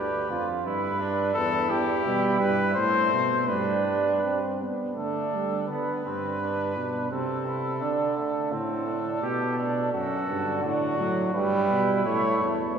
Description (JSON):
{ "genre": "classical, imitative canzona for brass ensemble", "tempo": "85 BPM", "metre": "3/4", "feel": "straight", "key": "G major", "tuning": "A4 = 443 Hz", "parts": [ { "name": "mellow trumpet", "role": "melody", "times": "0.0-12.8 s", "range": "F#4 to C#5", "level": "-29 LUFS", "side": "left 4 dB", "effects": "none" }, { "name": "clear flugelhorn", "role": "second line", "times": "0.0-12.8 s", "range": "A3 to G4", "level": "-30 LUFS", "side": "right 4 dB", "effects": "none" }, { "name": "clear bass trombone", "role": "bass", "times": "0.0-12.8 s", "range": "D2 to D3", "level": "-30 LUFS", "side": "right 2 dB", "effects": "none" }, { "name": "warm trombone", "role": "accompaniment", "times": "1.4-5.7, 10.3-12.8 s", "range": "D3 to C4", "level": "-28 LUFS", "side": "right 3 dB", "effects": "none" } ], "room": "wet church reverb, RT60 2.9 s", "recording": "small room reverb", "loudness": "-24 LUFS", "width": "side -7 dB against mid", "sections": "0.0-5.7 A section; 5.7-12.8 B section", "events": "none", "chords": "0.0 G; 1.4 Em; 2.8 Am; 3.5 Dsus4/G; 5.0 D5; 5.7 G; 7.1 Am/C; 7.8 D5; 9.2 G/B; 9.9 D/F#; 11.3 Em/G; 12.0 A" }